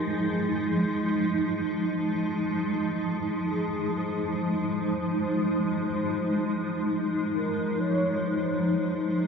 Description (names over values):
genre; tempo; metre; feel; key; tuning
dark ambient drone; free time; none; none; F minor; A4 = 440 Hz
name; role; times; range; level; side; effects
mellow horn-like synth lead; melody; 0.0-9.3 s; Ab4 to Db5; -34 LUFS; equal; ensemble chorus, ping-pong delay
granular cloud pad; sustained chords; 0.0-9.3 s; F3 to Eb4; -25 LUFS; equal; built-in reverb
room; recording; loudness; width
wet lush hall reverb, RT60 2.8 s; dreamy mix soaked in reverb; -25 LUFS; side -6 dB against mid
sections
0.0-4.0 A section; 4.0-9.3 B section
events
fade-in on soft synth lead 4.0-9.3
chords
0.0 Fm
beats
free time